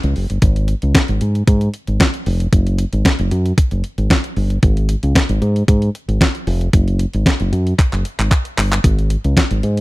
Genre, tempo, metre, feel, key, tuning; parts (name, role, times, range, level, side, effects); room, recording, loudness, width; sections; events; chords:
early-eighties boogie funk; 114 BPM; 4/4; straight; A4 = 439 Hz
fingered electric bass; bass; 0.0-9.8 s; E#1 to G#2; -16 LUFS; equal
clean 12-bit digital drum machine; drums; 0.0-9.8 s; handclaps, hi-hat, kick drum, snare drum; -15 LUFS; equal
digital ambience; dry, close 1970s-style studio recording; -14 LUFS; side -20 dB against mid
0.4-9.8 A section
drum fill 7.8-8.8